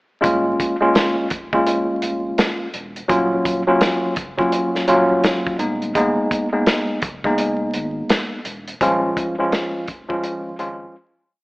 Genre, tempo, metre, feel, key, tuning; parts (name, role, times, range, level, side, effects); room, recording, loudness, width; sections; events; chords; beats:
hip hop, boom-bap hip-hop; 84 BPM; 4/4; swing 63% on 16ths; A4 = 436 Hz
mellow tine electric piano; accompaniment; 0.2-11.0 s; F3 to F4; -18 LUFS; equal; overdrive, fast stereo tremolo, cassette tape, high-pass filter, low-pass filter
warm sub bass; bass; 0.2-10.9 s; Eb1 to Ab1; -37 LUFS; equal
warm soul drum kit; drums; 0.2-10.8 s; hi-hat, kick drum, snare drum; -21 LUFS; equal
moderate echo chamber reverb, RT60 1.9 s, studio reverb; vinyl crackle, AM radio sound; -17 LUFS; side -24 dB against mid
0.2-11.4 verse
fade-out 8.8-11.4; break 11.0-11.4
0.2 Bbm7/Eb; 3.1 Ebm7; 5.6 Abmadd9/Eb; 8.8 Db/Eb
| 0.24 0.95 1.67 2.38 | 3.10 3.81 4.52 5.24 | 5.95 6.67 7.38 8.10 | 8.81 9.52 10.24 10.95